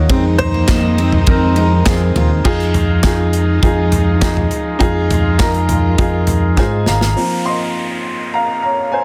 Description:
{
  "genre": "piano-driven pop",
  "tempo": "102 BPM",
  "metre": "4/4",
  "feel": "straight",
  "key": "unclear",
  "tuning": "A4 = 440 Hz",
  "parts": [
    { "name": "clear upright piano", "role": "accompaniment", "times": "0.0-9.0 s", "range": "F3 to C6", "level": "-20 LUFS", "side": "equal", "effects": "none" },
    { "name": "warm studio string section", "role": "sustained chords", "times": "0.0-7.1 s", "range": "F3 to F4", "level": "-29 LUFS", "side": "equal", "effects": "none" },
    { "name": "fingered electric bass", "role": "bass", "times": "0.0-7.1 s", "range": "Ab1 to F2", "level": "-18 LUFS", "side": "equal", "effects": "none" },
    { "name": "mellow French horn section", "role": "second line", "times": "0.1-2.1 s", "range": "Eb3 to Eb4", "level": "-25 LUFS", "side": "equal", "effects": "none" },
    { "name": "picked steel-string acoustic guitar", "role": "riff", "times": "0.1-2.3 s", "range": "Bb3 to F4", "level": "-23 LUFS", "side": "equal", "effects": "none" },
    { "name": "modern studio drum kit", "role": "drums", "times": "0.1-7.2 s", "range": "crash cymbal, handclaps, hi-hat, kick drum, ride cymbal, snare drum, toms", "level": "-19 LUFS", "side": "equal", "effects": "none" },
    { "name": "downlifter", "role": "sound effects", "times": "7.2-9.0 s", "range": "none", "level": "-28 LUFS", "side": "equal", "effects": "none" }
  ],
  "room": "light reverb, small room ambience",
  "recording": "dense, heavily limited modern master",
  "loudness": "-15 LUFS",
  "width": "mono",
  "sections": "0.0-2.5 A section; 2.5-7.2 B section; 7.2-9.0 C section",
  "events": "upright piano solo 0.0-2.5, 7.2-9.0; drum fill 6.6-7.2",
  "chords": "0.1 Fm7; 7.2 Bbsus2",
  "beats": "| 0.10 0.69 1.27 1.86 | 2.45 3.04 3.63 4.22 | 4.81 5.39 5.98 6.57 | 7.16 7.75 8.34 8.93"
}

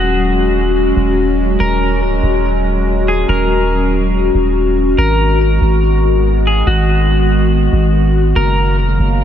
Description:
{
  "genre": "hip hop",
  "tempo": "142 BPM",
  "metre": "4/4",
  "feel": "half-time",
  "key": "Eb minor",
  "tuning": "A4 = 441 Hz",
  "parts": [
    { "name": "clean electric guitar", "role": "melody", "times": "0.0-8.8 s", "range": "Gb4 to Bb4", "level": "-20 LUFS", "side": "equal", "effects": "wide subtle chorus, ping-pong delay" },
    { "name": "warbly tape-like pad", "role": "sustained chords", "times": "0.0-9.2 s", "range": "Db3 to F5", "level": "-16 LUFS", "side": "left 2 dB", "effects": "chorus, built-in reverb, phaser" },
    { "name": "long sustained 808-style bass", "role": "bass", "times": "0.0-9.2 s", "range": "Db1 to Ab1", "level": "-14 LUFS", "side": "equal", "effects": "none" }
  ],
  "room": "moderate huge ambient reverb, RT60 5.6 s",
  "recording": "dreamy mix soaked in reverb",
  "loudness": "-11 LUFS",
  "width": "side -10 dB against mid",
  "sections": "0.0-9.2 A section",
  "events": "none",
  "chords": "0.0 Ebm7; 5.0 Abm7; 8.4 Gbmaj7",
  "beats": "0.33 0.75 1.18 | 1.60 2.02 2.44 2.87 | 3.29 3.71 4.13 4.56 | 4.98 5.40 5.83 6.25 | 6.67 7.09 7.51 7.94 | 8.36 8.78 9.21"
}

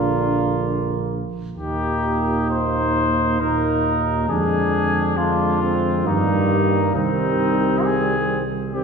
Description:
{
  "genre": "classical, brass quintet",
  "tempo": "64-68 BPM",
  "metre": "3/4",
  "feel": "straight",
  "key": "Eb major",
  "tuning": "A4 = 440 Hz",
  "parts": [
    { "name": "warm trumpet", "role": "melody", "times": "0.0-8.8 s", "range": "Eb4 to C5", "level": "-23 LUFS", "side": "left 4 dB", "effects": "none" },
    { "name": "warm flugelhorn", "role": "second line", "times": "0.0-8.8 s", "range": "Bb3 to Eb4", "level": "-24 LUFS", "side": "right 6 dB", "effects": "none" },
    { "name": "dark trombone", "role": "accompaniment", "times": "0.0-8.8 s", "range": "Bb2 to Eb3", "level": "-28 LUFS", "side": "right 3 dB", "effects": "none" },
    { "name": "mellow French horn", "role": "accompaniment", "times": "0.0-8.8 s", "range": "G3 to D4", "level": "-26 LUFS", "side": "left 1 dB", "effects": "none" },
    { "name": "warm bass trombone", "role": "bass", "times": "0.0-8.8 s", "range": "Bb1 to G2", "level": "-24 LUFS", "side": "right 1 dB", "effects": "none" }
  ],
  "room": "wet scoring stage reverb, RT60 1.6 s",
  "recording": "recorded in a church or concert hall",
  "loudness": "-18 LUFS",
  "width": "side -5 dB against mid",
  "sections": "0.0-1.6 A section; 1.6-8.8 B section",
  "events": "none",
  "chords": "0.0 Bb; 1.6 Eb; 4.3 Ddim/F; 6.1 Eb/G; 7.0 Cm",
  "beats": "0.65 | 1.58 2.51 3.41 | 4.29 5.18 6.07 | 6.95 7.85 8.73"
}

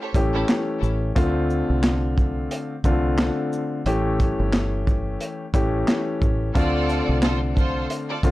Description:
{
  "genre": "hip hop, boom-bap hip-hop",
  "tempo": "89 BPM",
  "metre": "4/4",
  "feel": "swing 59% on 16ths",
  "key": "D minor",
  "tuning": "A4 = 440 Hz",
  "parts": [
    { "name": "dark baby grand piano", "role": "accompaniment", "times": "0.0-8.3 s", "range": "D3 to G4", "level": "-24 LUFS", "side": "left 2 dB", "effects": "cassette tape, high-pass filter, low-pass filter" },
    { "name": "clear studio string section", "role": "stabs", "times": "0.0-0.5, 6.6-8.2 s", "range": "C#4 to D5", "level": "-29 LUFS", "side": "right 2 dB", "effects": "high-pass filter, low-pass filter, ping-pong delay" },
    { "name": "deep dub fingered electric bass", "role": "bass", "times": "0.1-8.3 s", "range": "G1 to D2", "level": "-24 LUFS", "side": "equal", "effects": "none" },
    { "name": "crunchy breakbeat drum kit", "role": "drums", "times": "0.1-8.3 s", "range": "handclaps, hi-hat, kick drum, shaker, snare drum", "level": "-22 LUFS", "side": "equal", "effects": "none" }
  ],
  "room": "light reverb",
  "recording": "none",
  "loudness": "-20 LUFS",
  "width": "side -17 dB against mid",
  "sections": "0.0-8.3 A section",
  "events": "none",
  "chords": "0.0 A7; 1.2 Dm7; 3.9 A7; 6.6 Dm7",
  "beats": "0.49 | 1.16 1.83 2.51 3.18 | 3.86 4.53 5.21 5.88 | 6.55 7.23 7.90"
}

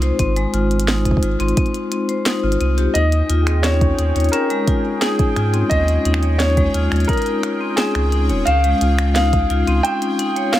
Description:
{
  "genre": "IDM",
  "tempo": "87 BPM",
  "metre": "4/4",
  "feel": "straight",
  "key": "unclear",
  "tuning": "A4 = 440 Hz",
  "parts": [
    { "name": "vibraphone with hard mallets", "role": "arpeggios", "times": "0.0-10.6 s", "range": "Ab3 to Db5", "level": "-21 LUFS", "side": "left 2 dB", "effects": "digital delay" },
    { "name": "warm sub bass", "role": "bass", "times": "0.0-9.8 s", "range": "Eb1 to Ab2", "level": "-18 LUFS", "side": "right 1 dB", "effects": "none" },
    { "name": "glitchy drum kit", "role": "drums", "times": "0.0-10.6 s", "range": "finger snaps, hi-hat, snare drum", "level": "-24 LUFS", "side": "right 1 dB", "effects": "tape echo" },
    { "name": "electronic kick drum", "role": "drums", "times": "0.2-9.5 s", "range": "none", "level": "-19 LUFS", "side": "right 1 dB", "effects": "none" },
    { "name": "felt-muted upright piano", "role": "melody", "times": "2.9-10.6 s", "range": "Ab4 to G5", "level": "-21 LUFS", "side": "equal", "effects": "tape echo" },
    { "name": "bubbling stepped-filter texture", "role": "texture", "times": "3.2-10.6 s", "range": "Ab4 to G5", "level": "-30 LUFS", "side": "equal", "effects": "chorus, built-in reverb" }
  ],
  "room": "little or no reverb",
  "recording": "none",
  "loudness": "-15 LUFS",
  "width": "side -13 dB against mid",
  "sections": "0.0-10.6 A section",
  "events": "none",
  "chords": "0.0 Ab; 3.0 Eb7sus4; 8.5 Bbm/Db (rootless)",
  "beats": "| 0.19 0.88 1.57 2.26 | 2.95 3.64 4.33 5.02 | 5.71 6.40 7.09 7.78 | 8.47 9.16 9.85 10.54"
}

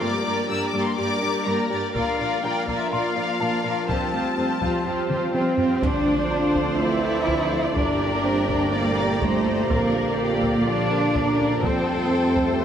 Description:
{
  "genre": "cinematic, hybrid orchestral and electronic film score",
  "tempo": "124 BPM",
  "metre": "4/4",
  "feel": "straight",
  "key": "D minor",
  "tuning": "A4 = 440 Hz",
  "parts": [
    { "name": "rich symphonic violin section", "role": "melody", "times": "0.0-12.6 s", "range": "E5 to E6", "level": "-31 LUFS", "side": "left 4 dB", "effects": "none" },
    { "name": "warm symphonic violin section", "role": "second line", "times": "0.0-12.6 s", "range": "F4 to D5", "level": "-29 LUFS", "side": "left 3 dB", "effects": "none" },
    { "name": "rich symphonic viola section", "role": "accompaniment", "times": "0.0-12.6 s", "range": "Bb3 to D5", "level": "-29 LUFS", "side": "right 1 dB", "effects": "none" },
    { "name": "lush unison pad", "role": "sustained chords", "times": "0.0-12.6 s", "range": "Bb2 to Bb5", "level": "-29 LUFS", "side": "equal", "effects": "chorus" },
    { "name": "thumb-piano-like synth pluck", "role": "arpeggios", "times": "0.0-12.6 s", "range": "D3 to Bb4", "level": "-32 LUFS", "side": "left 1 dB", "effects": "chorus" },
    { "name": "warm chamber cello section", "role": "bass", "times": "0.0-12.6 s", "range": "F2 to E4", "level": "-26 LUFS", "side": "right 2 dB", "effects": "none" },
    { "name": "warm baby grand piano", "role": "texture", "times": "0.0-11.7 s", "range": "C4 to C6", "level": "-34 LUFS", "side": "left 1 dB", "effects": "tape echo" },
    { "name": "taiko ensemble", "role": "drums", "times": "2.0-12.6 s", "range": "none", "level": "-30 LUFS", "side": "equal", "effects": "none" },
    { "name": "swell and impact", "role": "sound effects", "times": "4.6-7.8 s", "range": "none", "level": "-32 LUFS", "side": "equal", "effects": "none" },
    { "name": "dark French horn section", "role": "sustained chords", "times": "5.3-12.6 s", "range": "E3 to D4", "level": "-29 LUFS", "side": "left 2 dB", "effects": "none" },
    { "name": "warm trombone section", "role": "sustained chords", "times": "5.8-12.6 s", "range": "Bb2 to C4", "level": "-32 LUFS", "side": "right 4 dB", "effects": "none" },
    { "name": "rich symphonic double bass section", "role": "bass", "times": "5.8-12.6 s", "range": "G1 to F2", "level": "-30 LUFS", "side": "right 2 dB", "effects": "none" }
  ],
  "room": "wet scoring stage reverb, RT60 1.5 s",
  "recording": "none",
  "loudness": "-20 LUFS",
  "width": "side -9 dB against mid",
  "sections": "0.0-5.8 A section; 5.8-12.6 B section",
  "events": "swell 4.6-5.8; drum fill 5.1-5.8; impact 5.8-7.8",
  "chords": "0.0 Gm; 2.0 Bb; 3.9 Fadd9; 5.8 Dm7; 7.8 Gm; 9.7 Bb; 11.6 Fadd9",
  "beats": "| 0.02 0.51 0.99 1.47 | 1.96 2.44 2.93 3.41 | 3.89 4.38 4.86 5.34 | 5.83 6.31 6.80 7.28 | 7.76 8.25 8.73 9.22 | 9.70 10.18 10.67 11.15 | 11.64 12.12 12.60"
}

